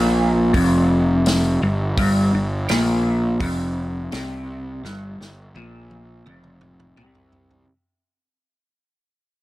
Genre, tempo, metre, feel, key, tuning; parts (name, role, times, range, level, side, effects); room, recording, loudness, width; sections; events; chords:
psychedelic rock; 84 BPM; 4/4; straight; G minor; A4 = 440 Hz
electric guitar through a small old amp; riff; 0.0-7.7 s; F2 to C3; -20 LUFS; equal; rotary speaker
fuzz picked electric bass; bass; 0.0-7.6 s; F1 to C2; -24 LUFS; equal; overdrive
vintage drum kit; drums; 0.5-7.7 s; hi-hat, kick drum, snare drum, toms; -26 LUFS; equal
light reverb, small room ambience; -17 LUFS; side -17 dB against mid
0.0-7.7 A section
fade-out 0.0-7.7; drum fill 4.8-7.7
0.0 Gm